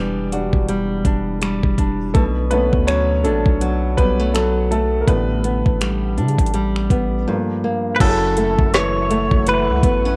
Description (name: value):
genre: contemporary R&B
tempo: 82 BPM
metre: 4/4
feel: swing 58% on 16ths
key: B minor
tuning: A4 = 442 Hz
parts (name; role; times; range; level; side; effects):
- clear concert grand piano; accompaniment; 0.0-10.2 s; D3 to C#5; -26 LUFS; equal; cassette tape
- flamenco guitar; arpeggios; 0.0-10.2 s; F#2 to F#4; -24 LUFS; equal; cassette tape, analog delay
- long sustained 808-style bass; bass; 0.0-10.2 s; E1 to C#3; -24 LUFS; equal; none
- smooth R&B drum kit; drums; 0.3-10.0 s; crash cymbal, finger snaps, hi-hat, kick drum, snare drum; -22 LUFS; equal; cassette tape
- direct-recorded clean electric guitar; melody; 8.0-10.2 s; A4 to C#5; -22 LUFS; equal; cassette tape
- ethereal airy pad; sustained chords; 8.7-10.2 s; A4 to C#6; -34 LUFS; equal; ensemble chorus, built-in reverb, phaser, cassette tape
- soft synth bell; texture; 8.7-10.2 s; C#6; -38 LUFS; equal; none
room: light reverb, digital ambience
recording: home recording on cassette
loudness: -18 LUFS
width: mono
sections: 0.0-8.0 A section; 8.0-10.2 B section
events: grand piano solo 0.0-8.0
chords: 0.0 Em9; 2.2 Bm7; 5.1 A9sus4; 7.3 Gm7; 8.0 F#m7